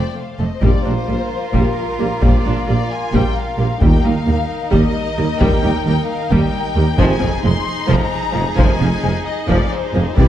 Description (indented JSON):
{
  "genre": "cinematic, epic orchestral film score",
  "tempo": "264 BPM (eighths)",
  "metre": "7/8",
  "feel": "straight",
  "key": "F dorian",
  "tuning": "A4 = 440 Hz",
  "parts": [
    { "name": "warm symphonic violin section", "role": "melody", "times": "0.0-10.3 s", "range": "Bb4 to C6", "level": "-25 LUFS", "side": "left 6 dB", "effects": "none" },
    { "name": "warm studio violin section", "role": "second line", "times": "0.0-10.3 s", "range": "Eb4 to C5", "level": "-25 LUFS", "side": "equal", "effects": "none" },
    { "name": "warm symphonic viola section", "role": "accompaniment", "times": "0.0-10.3 s", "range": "E3 to Eb4", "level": "-22 LUFS", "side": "equal", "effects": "none" },
    { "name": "rich studio cello section", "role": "bass", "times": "0.4-10.3 s", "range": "Eb2 to C3", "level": "-22 LUFS", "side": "right 2 dB", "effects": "none" },
    { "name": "warm symphonic double bass section", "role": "bass", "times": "0.4-10.3 s", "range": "F1 to Eb2", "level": "-22 LUFS", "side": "right 2 dB", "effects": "none" },
    { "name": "dark French horn section", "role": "sustained chords", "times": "0.6-10.3 s", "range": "G3 to G4", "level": "-32 LUFS", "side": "left 4 dB", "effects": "none" },
    { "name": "warm trombone section", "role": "sustained chords", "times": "0.6-10.3 s", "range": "Bb2 to F3", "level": "-25 LUFS", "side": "right 2 dB", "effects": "none" },
    { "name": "warm tuba", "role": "bass", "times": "0.6-10.3 s", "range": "F1 to Eb2", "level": "-23 LUFS", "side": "right 2 dB", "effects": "none" },
    { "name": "taiko ensemble", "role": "drums", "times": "0.6-10.3 s", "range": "none", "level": "-18 LUFS", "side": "left 1 dB", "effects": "none" }
  ],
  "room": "moderate scoring stage reverb, RT60 1.8 s",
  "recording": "dark, warm production",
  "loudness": "-14 LUFS",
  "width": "side -11 dB against mid",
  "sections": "0.6-10.3 A section",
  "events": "none",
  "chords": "0.0 F; 0.6 Bb6; 3.8 Eb; 7.0 Fm7",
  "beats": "0.16 0.40 | 0.63 0.86 1.09 1.31 1.54 1.77 2.00 | 2.23 2.46 2.68 2.91 3.14 3.37 3.59 | 3.82 4.05 4.27 4.50 4.73 4.95 5.18 | 5.41 5.64 5.86 6.09 6.32 6.54 6.77 | 7.00 7.22 7.45 7.68 7.91 8.13 8.36 | 8.59 8.82 9.04 9.27 9.50 9.73 9.96 | 10.19"
}